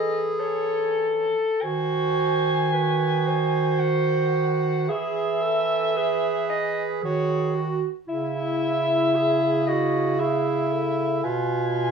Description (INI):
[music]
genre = classical, lyrical piece for single-reed quartet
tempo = 56 BPM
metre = 3/4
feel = rubato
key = E major, C# minor from 8.1 s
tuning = A4 = 440 Hz
[part]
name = dark soprano saxophone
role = melody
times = 0.0-11.9 s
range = A4 to G#5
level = -26 LUFS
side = left 2 dB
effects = none
[part]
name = warm clarinet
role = second line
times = 0.0-11.9 s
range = E4 to C#5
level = -28 LUFS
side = right 4 dB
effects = none
[part]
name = warm tenor saxophone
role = accompaniment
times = 0.0-11.9 s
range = E4 to A4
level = -27 LUFS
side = equal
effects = none
[part]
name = clear bass clarinet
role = bass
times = 0.0-11.9 s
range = Cb3 to E3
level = -27 LUFS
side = right 4 dB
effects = none
[sound]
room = light reverb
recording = worn, warbling old tape, cassette tape, warbly pitch drift, studio ambience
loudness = -21 LUFS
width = side -6 dB against mid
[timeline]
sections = 0.0-11.9 A section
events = none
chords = 0.0 Eadd11; 1.6 G#7/D#; 4.9 E; 8.1 C#m; 11.2 Fdim/Cb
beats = 0.40 | 1.63 2.73 3.80 | 4.89 5.96 7.03 | 8.09 9.14 10.20 | 11.24